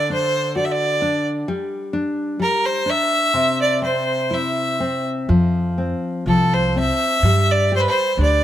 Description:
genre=fado-style ballad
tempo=60-66 BPM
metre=2/4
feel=rubato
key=unclear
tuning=A4 = 440 Hz
part: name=clear fiddle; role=melody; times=0.0-8.4 s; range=A4 to E5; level=-19 LUFS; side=right 1 dB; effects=none
part: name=nylon-string guitar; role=accompaniment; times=0.0-8.4 s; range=C3 to G4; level=-22 LUFS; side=left 2 dB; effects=none
part: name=upright bass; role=bass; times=5.3-8.4 s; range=C2 to G2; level=-19 LUFS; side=right 1 dB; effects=none
room=moderate spring reverb, RT60 2.8 s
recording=none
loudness=-17 LUFS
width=side -12 dB against mid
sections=0.0-8.4 A section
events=none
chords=0.0 D; 1.5 G5; 3.3 C; 5.3 F5; 7.2 G5

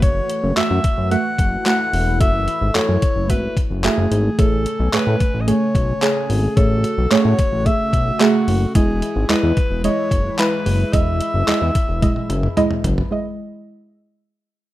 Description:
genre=dance-pop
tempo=110 BPM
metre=4/4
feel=straight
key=E major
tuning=A4 = 441 Hz
part: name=clear alto saxophone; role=melody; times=0.0-12.6 s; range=F#4 to F#5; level=-23 LUFS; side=left 1 dB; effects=digital delay
part: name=soft round pluck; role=accompaniment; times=0.0-14.7 s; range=G#3 to F#5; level=-20 LUFS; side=right 2 dB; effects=chorus, sidechain pumping
part: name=chorused pulse-width pad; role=sustained chords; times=0.0-13.1 s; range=C#3 to G#5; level=-27 LUFS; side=equal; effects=sidechain pumping
part: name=fat analog bass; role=bass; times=0.0-13.0 s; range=E1 to A2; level=-20 LUFS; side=left 1 dB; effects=sidechain pumping
part: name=detuned 8-bit digital drum machine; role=drums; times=0.0-13.1 s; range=handclaps, hi-hat, kick drum, toms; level=-20 LUFS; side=left 1 dB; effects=overdrive
room=moderate small room reverb, RT60 0.6 s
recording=rough home demo mix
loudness=-15 LUFS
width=side -15 dB against mid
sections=0.0-13.1 A section; 13.1-14.7 B section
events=drum fill 12.0-13.1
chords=0.0 F#m7; 4.4 Amaj7; 8.8 Emaj7

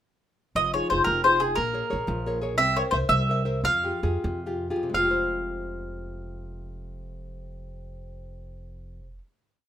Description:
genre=italian folk, Italian serenade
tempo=81-120 BPM (dotted quarters)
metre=6/8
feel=rubato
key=F minor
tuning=A4 = 441 Hz
part: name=mandolin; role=melody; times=0.6-9.2 s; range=Ab4 to F5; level=-23 LUFS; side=equal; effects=none
part: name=nylon-string guitar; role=accompaniment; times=0.6-9.3 s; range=F2 to E5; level=-31 LUFS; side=left 1 dB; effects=none
part: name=upright bass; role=bass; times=0.6-9.2 s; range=F1 to F2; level=-32 LUFS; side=right 1 dB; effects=none
room=moderate studio reverb, RT60 0.6 s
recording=minimal, uncompressed stereo recording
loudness=-22 LUFS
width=side -10 dB against mid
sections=0.6-4.9 A section; 4.9-7.9 final chord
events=slowing down 2.6-4.9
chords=0.6 Fm7; 1.6 Bbm7; 2.6 C7; 3.6 Fmadd9; 4.9 Fm

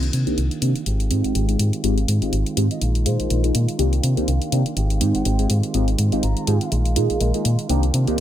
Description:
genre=filtered disco house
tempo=123 BPM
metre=4/4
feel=swing 56% on 16ths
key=unclear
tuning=A4 = 440 Hz
part: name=funky polysynth comp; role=accompaniment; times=0.0-8.2 s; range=Ab3 to Ab4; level=-24 LUFS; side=equal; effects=chorus, phaser, vintage 12-bit sampler grit, low-pass filter
part: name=clear studio violin section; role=sustained chords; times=0.0-8.2 s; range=F4 to F5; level=-37 LUFS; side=left 1 dB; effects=low-pass filter
part: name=clean electric guitar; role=riff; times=0.0-8.2 s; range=Eb3 to G4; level=-28 LUFS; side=right 3 dB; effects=low-pass filter
part: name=slap-like FM bass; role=bass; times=0.0-8.2 s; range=Ab1 to C3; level=-20 LUFS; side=equal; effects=tube saturation, low-pass filter
part: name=electronic hi-hat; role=drums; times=0.0-8.2 s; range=none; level=-29 LUFS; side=left 2 dB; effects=none
part: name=breathy bright jazz flute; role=melody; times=1.2-6.7 s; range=C5 to Bb5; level=-37 LUFS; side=right 2 dB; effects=low-pass filter
room=little or no reverb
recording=none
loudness=-18 LUFS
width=side -11 dB against mid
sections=0.0-8.2 A section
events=none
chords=0.0 Cm9; 0.9 Fm9/Ab; 2.8 Bb7sus4; 3.8 Cm9; 4.8 Fm9/Ab; 6.7 Bb7sus4; 7.7 Cm9

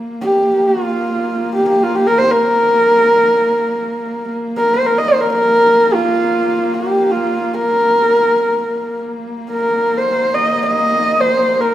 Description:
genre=mongolian traditional, Mongolian folk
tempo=free time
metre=none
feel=none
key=Bb zhi mode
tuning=A4 = 440 Hz
part: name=dark horsehead fiddle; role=drone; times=0.0-11.7 s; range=Bb3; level=-22 LUFS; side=left 1 dB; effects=none
part: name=warm horsehead fiddle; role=melody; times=0.2-11.7 s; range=F4 to Eb5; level=-13 LUFS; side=equal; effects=none
room=wet recital hall reverb, RT60 1.8 s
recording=minimal, uncompressed stereo recording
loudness=-12 LUFS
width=side -12 dB against mid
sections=0.0-11.7 A section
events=none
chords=none

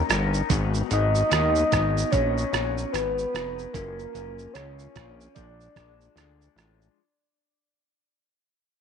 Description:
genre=indie pop, bedroom pop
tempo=74 BPM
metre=4/4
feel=swing 60% on 16ths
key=unclear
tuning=A4 = 441 Hz
part: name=soft octave-layered synth lead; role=melody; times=0.0-6.5 s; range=Bb4 to Eb5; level=-27 LUFS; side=equal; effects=analog chorus, tape echo
part: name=electric guitar through a small old amp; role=accompaniment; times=0.0-7.0 s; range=Gb2 to Bb4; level=-33 LUFS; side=left 14 dB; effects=wide subtle chorus, warbly pitch drift
part: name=fat analog bass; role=bass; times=0.0-6.9 s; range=F1 to Eb2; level=-27 LUFS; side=equal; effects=none
part: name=lo-fi sampler-style drum kit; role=drums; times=0.1-7.0 s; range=hi-hat, kick drum, rim click, shaker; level=-27 LUFS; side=right 5 dB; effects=overdrive
room=light reverb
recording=1960s-style stereo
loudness=-22 LUFS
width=side -7 dB against mid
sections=0.0-7.0 A section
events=fade-out 0.0-7.0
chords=0.0 Ebm7; 0.5 Abm7; 3.7 Gbmaj7; 5.4 Bb7

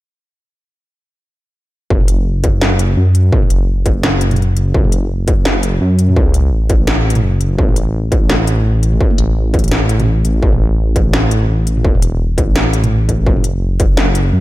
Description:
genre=half-time drum and bass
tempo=169 BPM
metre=4/4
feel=swing 57% on 16ths, half-time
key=F# minor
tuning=A4 = 438 Hz
part: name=dark detuned saw bass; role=bass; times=1.9-14.4 s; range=E1 to F#2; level=-13 LUFS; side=equal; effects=none
part: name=electronic kick drum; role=drums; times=1.9-13.9 s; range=none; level=-14 LUFS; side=equal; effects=distortion
part: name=industrial drum kit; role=drums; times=2.0-14.2 s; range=hi-hat, snare drum, toms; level=-19 LUFS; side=equal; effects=none
room=little or no reverb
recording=none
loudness=-11 LUFS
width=side -17 dB against mid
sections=1.9-14.4 A section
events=none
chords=none

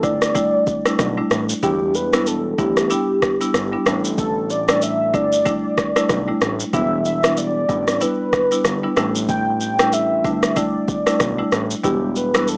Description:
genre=afrobeats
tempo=94 BPM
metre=4/4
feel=swing 58% on 16ths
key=unclear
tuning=A4 = 440 Hz
part: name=warm velvety synth lead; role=melody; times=0.0-12.6 s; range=G4 to G5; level=-23 LUFS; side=equal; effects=chorus
part: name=marimba with medium mallets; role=accompaniment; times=0.0-12.6 s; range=G3 to E4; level=-25 LUFS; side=equal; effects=none
part: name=fat analog bass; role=bass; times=0.0-12.6 s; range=E1 to B1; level=-28 LUFS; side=equal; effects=none
part: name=afro-pop drum kit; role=drums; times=0.0-12.6 s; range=kick drum, rim click, shaker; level=-24 LUFS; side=equal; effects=overdrive
room=digital ambience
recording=dry, gritty hardware recording, small speaker sound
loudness=-19 LUFS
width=mono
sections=0.0-12.6 A section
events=none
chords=0.0 A7sus4; 1.6 Em7; 3.9 A7sus4; 6.7 Em7; 9.0 A7sus4; 11.8 Em7

